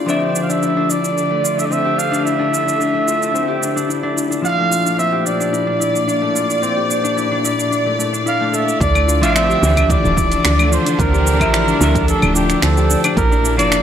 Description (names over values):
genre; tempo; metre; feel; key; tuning
organic downtempo; 110 BPM; 4/4; straight; D minor; A4 = 436 Hz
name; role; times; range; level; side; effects
semi-hollow electric guitar; accompaniment; 0.0-13.8 s; E3 to E5; -22 LUFS; left 1 dB; analog chorus, sidechain pumping
clear studio string section; sustained chords; 0.0-13.8 s; Bb2 to D5; -24 LUFS; right 1 dB; sidechain pumping
concert harp; arpeggios; 0.0-13.8 s; A3 to D5; -21 LUFS; left 4 dB; vintage 12-bit sampler grit, ping-pong delay
trumpet with bucket mute; melody; 0.1-13.8 s; G4 to F5; -19 LUFS; right 2 dB; ping-pong delay
deep house drum kit; drums; 0.1-13.8 s; claves, finger snaps, hi-hat, shaker; -23 LUFS; right 1 dB; overdrive
woody FM bass; bass; 8.8-13.8 s; D1 to D2; -17 LUFS; right 1 dB; tube saturation
electronic kick drum; drums; 8.8-13.3 s; none; -20 LUFS; right 1 dB; overdrive
room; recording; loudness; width
wet plate reverb, RT60 2.3 s; bright 1980s-style digital production; -14 LUFS; side -9 dB against mid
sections
0.0-8.8 A section; 8.8-13.8 B section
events
none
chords
0.1 Dmadd9; 4.4 Bb; 8.8 Dmadd9; 13.2 Bb